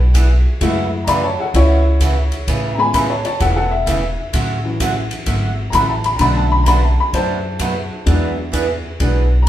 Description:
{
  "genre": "country, western swing",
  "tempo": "129 BPM",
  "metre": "4/4",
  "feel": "swing 66% on 8ths",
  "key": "A major",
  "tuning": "A4 = 440 Hz",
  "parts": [
    { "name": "warm upright piano", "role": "accompaniment", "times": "0.0-9.5 s", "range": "D3 to B5", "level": "-19 LUFS", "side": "left 2 dB", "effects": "none" },
    { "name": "upright bass", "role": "bass", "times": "0.0-9.5 s", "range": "E1 to F#2", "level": "-16 LUFS", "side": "equal", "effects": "none" },
    { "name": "picked acoustic archtop guitar", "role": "accompaniment", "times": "0.1-9.2 s", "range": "B2 to G#4", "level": "-23 LUFS", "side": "right 3 dB", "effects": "none" },
    { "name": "swinging big-band drum kit", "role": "drums", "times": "0.1-9.5 s", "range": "hi-hat, kick drum, ride cymbal", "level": "-24 LUFS", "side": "equal", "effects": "none" }
  ],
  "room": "wet large studio reverb, RT60 1.0 s",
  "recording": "band playing live in one room",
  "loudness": "-14 LUFS",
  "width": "side -12 dB against mid",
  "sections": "0.0-9.5 A section",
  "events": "upright piano solo 0.0-9.5",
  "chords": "0.0 E7; 0.6 F#m7; 2.5 Amaj7; 4.3 Dmaj7/A; 6.2 Bm7; 8.1 E9",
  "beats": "0.15 | 0.61 1.08 1.55 2.01 | 2.48 2.94 3.41 3.88 | 4.34 4.81 5.28 5.74 | 6.21 6.67 7.14 7.61 | 8.07 8.54 9.00 9.47"
}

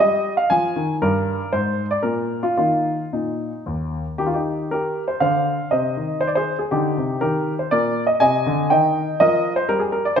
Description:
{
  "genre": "classical, baroque-style suite movement for grand piano",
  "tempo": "108-123 BPM",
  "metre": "3/4",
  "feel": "rubato",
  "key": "Eb major",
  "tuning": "A4 = 440 Hz",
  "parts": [
    { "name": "warm baby grand piano", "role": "solo", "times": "0.0-10.2 s", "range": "Eb2 to Ab5", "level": "-18 LUFS", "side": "equal", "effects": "none" }
  ],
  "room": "wet recital hall reverb, RT60 1.6 s",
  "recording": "minimal, uncompressed stereo recording",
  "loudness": "-18 LUFS",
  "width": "side -7 dB against mid",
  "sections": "0.0-4.2 A section; 4.2-10.2 A section",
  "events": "none",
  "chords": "0.0 Fm; 1.0 N.C.; 2.6 Eb5; 4.2 Cm/Eb; 5.7 Cm; 7.2 Eb",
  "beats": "0.50 | 1.01 1.52 2.03 | 2.56 3.12 3.66 | 4.18 4.70 5.20 | 5.71 6.21 6.71 | 7.20 7.70 8.20 | 8.70 9.19 9.69 | 10.18"
}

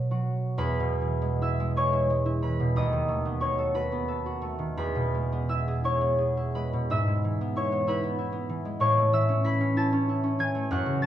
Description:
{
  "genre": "classical, solo harp piece",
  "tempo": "40-65 BPM (dotted quarters)",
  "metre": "6/8",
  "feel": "rubato",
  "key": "E major",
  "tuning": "A4 = 438 Hz",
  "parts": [
    { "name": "concert harp", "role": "solo", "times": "0.0-11.1 s", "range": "D#2 to B6", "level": "-24 LUFS", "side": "equal", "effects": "none" }
  ],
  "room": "wet recital hall reverb, RT60 1.3 s",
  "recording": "worn, warbling old tape, cassette tape, warbly pitch drift, small room ambience",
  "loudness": "-24 LUFS",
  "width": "side -11 dB against mid",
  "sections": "0.6-11.1 A section",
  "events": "none",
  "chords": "0.0 B5; 0.6 E; 2.7 B7/D#; 4.8 E; 6.9 E/G#; 8.8 A",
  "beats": "| 0.57 1.75 | 2.75 3.73 | 4.75 5.84 | 6.91 7.88 | 8.81 9.76 | 10.70"
}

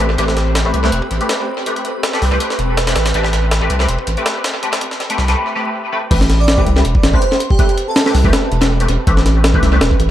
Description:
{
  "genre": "drum and bass, jungle",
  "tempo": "162 BPM",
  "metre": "4/4",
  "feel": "swing 54% on 16ths",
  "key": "A minor",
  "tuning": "A4 = 440 Hz",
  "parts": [
    { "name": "granular cloud pad", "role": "sustained chords", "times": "0.0-10.1 s", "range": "C4 to B5", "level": "-26 LUFS", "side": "right 3 dB", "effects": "built-in reverb" },
    { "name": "band-passed chord stab", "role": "stabs", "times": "0.0-9.8 s", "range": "A3 to B4", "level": "-20 LUFS", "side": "left 2 dB", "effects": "phaser, ensemble chorus, vintage 12-bit sampler grit, dub echo" },
    { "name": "saturated sub bass", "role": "bass", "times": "0.0-10.1 s", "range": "E1 to C2", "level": "-15 LUFS", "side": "equal", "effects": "none" },
    { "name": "jungle sampler-style drum kit", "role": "drums", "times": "0.0-10.1 s", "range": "crash cymbal, hi-hat, kick drum, snare drum", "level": "-16 LUFS", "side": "equal", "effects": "high-pass filter on hats, high-pass filter on kick, high-pass filter on snare, high-pass filter on cymbals, high-pass filter on room, tape echo" },
    { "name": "drifting glass-harmonics texture", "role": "texture", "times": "0.0-5.4 s", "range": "C4 to B5", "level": "-30 LUFS", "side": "left 2 dB", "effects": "none" },
    { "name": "airy dreamy lead", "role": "melody", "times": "6.4-8.1 s", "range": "G4 to D5", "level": "-21 LUFS", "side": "right 3 dB", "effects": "chorus, dub echo" }
  ],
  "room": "moderate spring reverb, RT60 2.0 s, digital ambience",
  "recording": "echo-heavy mix, vinyl crackle",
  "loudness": "-13 LUFS",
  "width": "side -12 dB against mid",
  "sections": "0.0-6.1 A section; 6.1-10.1 B section",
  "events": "build-up 0.0-6.1; drop 6.1-10.1",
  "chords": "0.0 Am9",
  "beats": "| 0.18 0.55 0.92 1.29 | 1.66 2.03 2.40 2.77 | 3.15 3.52 3.89 4.26 | 4.63 5.00 5.37 5.74 | 6.11 6.48 6.85 7.22 | 7.59 7.96 8.33 8.70 | 9.07 9.44 9.81"
}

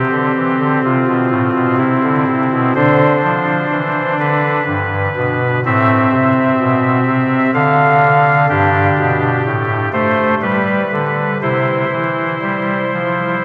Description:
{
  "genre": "classical, chorale-style piece for pipe organ",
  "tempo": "62 BPM",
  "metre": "3/4",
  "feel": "straight",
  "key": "unclear",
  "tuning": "A4 = 440 Hz",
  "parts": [
    { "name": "pipe organ, soft reed", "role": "solo", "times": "0.0-13.4 s", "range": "G2 to F5", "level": "-14 LUFS", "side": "equal", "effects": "none" }
  ],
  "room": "wet cathedral reverb, RT60 4.7 s",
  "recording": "vinyl crackle",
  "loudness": "-14 LUFS",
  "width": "mono",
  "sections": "0.0-13.4 A section",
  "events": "none",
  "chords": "0.0 Am (rootless); 2.8 Dm; 4.7 G; 5.6 Am; 7.5 N.C.; 8.5 G; 9.4 N.C.; 10.4 G; 11.4 C",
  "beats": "0.83 1.79 | 2.77 3.73 4.68 | 5.65 6.60 7.54 | 8.49 9.45 10.42 | 11.41 12.42 13.42"
}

